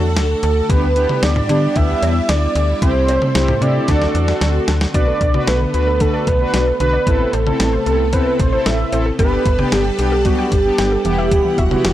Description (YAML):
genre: synth-pop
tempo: 113 BPM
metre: 4/4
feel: straight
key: G major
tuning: A4 = 445 Hz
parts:
  - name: wide unison lead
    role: melody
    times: 0.0-11.9 s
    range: F#4 to E5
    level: -19 LUFS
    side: right 2 dB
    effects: none
  - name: analog synth brass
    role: accompaniment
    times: 0.0-11.9 s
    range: B3 to B4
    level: -22 LUFS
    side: left 1 dB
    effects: chorus
  - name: string machine, violins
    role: sustained chords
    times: 0.0-11.9 s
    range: B2 to F#5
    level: -26 LUFS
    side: left 1 dB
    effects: ensemble chorus
  - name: slap-like FM bass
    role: bass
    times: 0.0-11.9 s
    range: E1 to D3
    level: -18 LUFS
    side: equal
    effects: none
  - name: clean 12-bit digital drum machine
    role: drums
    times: 0.2-11.9 s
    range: cowbell, hi-hat, kick drum, snare drum, toms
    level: -19 LUFS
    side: equal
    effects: none
  - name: wide unison pluck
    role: arpeggios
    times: 4.9-11.9 s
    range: C3 to G5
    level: -26 LUFS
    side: left 2 dB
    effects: none
room: digital ambience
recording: dry, gritty hardware recording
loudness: -14 LUFS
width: side -13 dB against mid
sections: 0.0-4.9 A section; 4.9-11.9 B section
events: drum fill 3.9-4.9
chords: 0.0 D; 0.7 G6/D; 2.8 C6; 3.9 D7; 4.9 Bm7; 7.1 Amadd9; 9.2 Gadd9; 11.1 Emadd9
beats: 0.17 | 0.70 1.23 1.76 2.29 | 2.82 3.35 3.88 4.41 | 4.94 5.47 6.01 6.54 | 7.07 7.60 8.13 8.66 | 9.19 9.72 10.25 10.79 | 11.31 11.85